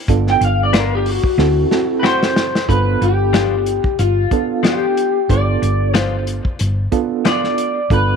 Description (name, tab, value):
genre	straight-eighth soul blues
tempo	92 BPM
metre	4/4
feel	swing 55% on 16ths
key	G mixolydian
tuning	A4 = 440 Hz
part	mellow reed electric piano	accompaniment	0.1-8.2 s	B3 to A4	-21 LUFS	right 13 dB	tremolo
part	hollow-body short-scale fingered electric bass	bass	0.1-8.2 s	G1 to D2	-17 LUFS	left 1 dB	none
part	warm soul drum kit	drums	0.1-8.1 s	hi-hat, kick drum, snare drum	-20 LUFS	left 1 dB	none
part	electric guitar through a small old amp	melody	0.3-8.2 s	F4 to G5	-18 LUFS	left 3 dB	lush chorus
part	direct-recorded clean electric guitar	stabs	0.7-7.5 s	F3 to F#4	-25 LUFS	left 11 dB	tape echo
room	light reverb, small room ambience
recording	1960s-style stereo with parts hard left and right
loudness	-14 LUFS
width	side -6 dB against mid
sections	0.0-2.7 A section; 2.7-8.2 B section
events	clean electric guitar solo 0.0-2.7; drum fill 1.4-2.7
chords	0.1 G7; 1.4 D7; 2.7 G7